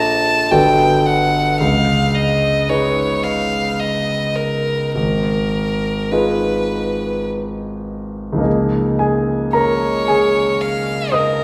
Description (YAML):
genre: classical, impressionist duo for violin and grand piano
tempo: 51-58 BPM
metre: 3/4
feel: rubato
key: unclear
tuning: A4 = 440 Hz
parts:
  - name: bright violin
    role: melody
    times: 0.0-11.4 s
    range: A#4 to A5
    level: -21 LUFS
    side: equal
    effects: none
  - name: clear concert grand piano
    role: accompaniment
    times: 0.0-11.4 s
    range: G1 to D#6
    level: -19 LUFS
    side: equal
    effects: none
room: wet recital hall reverb, RT60 1.6 s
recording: heard from further back in the room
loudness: -17 LUFS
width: mono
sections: 0.0-8.5 A section; 8.5-11.4 B section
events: none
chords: 0.0 A#maj9; 0.5 Gmaj9; 1.6 C#sus2; 5.0 G#m6; 8.5 C#69